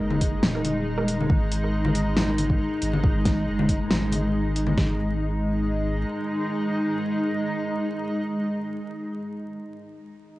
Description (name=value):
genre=deep dubstep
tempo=138 BPM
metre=4/4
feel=half-time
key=unclear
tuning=A4 = 440 Hz
part: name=granular cloud pad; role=sustained chords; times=0.0-8.4 s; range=G#3 to D#4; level=-26 LUFS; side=equal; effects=built-in reverb, cassette tape
part: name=saturated sub bass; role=bass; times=0.0-6.0 s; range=D#1 to G#1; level=-27 LUFS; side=equal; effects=none
part: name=congas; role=percussion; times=0.1-4.8 s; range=none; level=-30 LUFS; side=left 2 dB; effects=none
part: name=deep house drum kit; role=drums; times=0.2-4.9 s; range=kick drum, snare drum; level=-23 LUFS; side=equal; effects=cassette tape
part: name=deep house drum kit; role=drums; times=0.2-4.7 s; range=hi-hat, snare drum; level=-26 LUFS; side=equal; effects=cassette tape
part: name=filtered dub chord stab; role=stabs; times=1.0 s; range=G#3 to A#4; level=-36 LUFS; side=right 3 dB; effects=phaser, cassette tape, dub echo
room=moderate spring reverb, RT60 1.4 s, digital ambience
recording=home recording on cassette, vinyl crackle, nothing above 10.8 kHz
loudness=-22 LUFS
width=side -17 dB against mid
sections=0.0-4.8 A section; 4.8-8.3 B section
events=none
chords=0.0 G#5